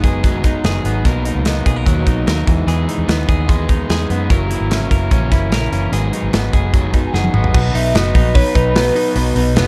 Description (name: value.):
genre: jangly indie pop.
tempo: 148 BPM.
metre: 4/4.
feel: straight.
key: B major.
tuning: A4 = 439 Hz.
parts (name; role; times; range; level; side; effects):
crunchy overdriven guitar; accompaniment; 0.0-9.7 s; F#2 to E4; -25 LUFS; equal; none.
direct-recorded clean electric guitar; arpeggios; 0.0-9.7 s; G#2 to B4; -25 LUFS; equal; spring reverb, tape echo.
vintage muted fingered electric bass; bass; 0.0-9.7 s; F#1 to F#2; -21 LUFS; equal; none.
modern studio drum kit; drums; 0.0-9.7 s; crash cymbal, hi-hat, kick drum, snare drum, toms; -19 LUFS; equal; none.
warbly nostalgic lead; melody; 7.1-9.7 s; B4 to G#5; -22 LUFS; equal; chorus.
warm analog keys; accompaniment; 7.5-9.7 s; B3 to C#5; -28 LUFS; equal; none.
room: small room reverb.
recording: dark, warm production.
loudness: -16 LUFS.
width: mono.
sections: 0.0-7.5 A section; 7.5-9.7 B section.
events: drum fill 7.1-7.5.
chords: 0.0 G#m7; 1.1 Bmaj7; 2.5 Emaj7; 4.3 F#7; 5.9 G#m7; 7.5 B.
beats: 0.24 0.65 | 1.05 1.46 1.87 2.27 | 2.68 3.08 3.49 3.90 | 4.30 4.71 5.12 5.52 | 5.93 6.33 6.74 7.14 | 7.55 7.95 8.35 8.76 | 9.16 9.56.